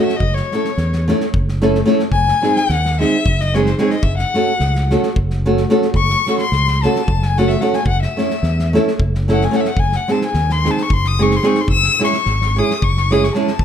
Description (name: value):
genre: balkan folk, Balkan wedding band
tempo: 220 BPM (eighths)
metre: 7/8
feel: straight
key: F# dorian sharp4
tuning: A4 = 438 Hz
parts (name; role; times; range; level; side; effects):
- rich violin; second line; 0.0-13.6 s; B#4 to E6; -20 LUFS; left 6 dB; none
- nylon-string guitar; accompaniment; 0.0-13.5 s; G#3 to A4; -17 LUFS; right 2 dB; none
- loose indie drum kit; percussion; 0.1-13.6 s; kick drum, snare drum; -24 LUFS; left 1 dB; none
- fingered electric bass; bass; 0.2-13.6 s; F#1 to E2; -18 LUFS; equal; none
room: light reverb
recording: dark, warm production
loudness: -14 LUFS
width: side -9 dB against mid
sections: 0.0-13.6 A section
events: violin solo 0.0-13.6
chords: 0.2 A/F#; 2.1 G#/F#; 4.0 F#m; 7.9 A/F#; 9.8 G#/F#; 11.7 C#m/F#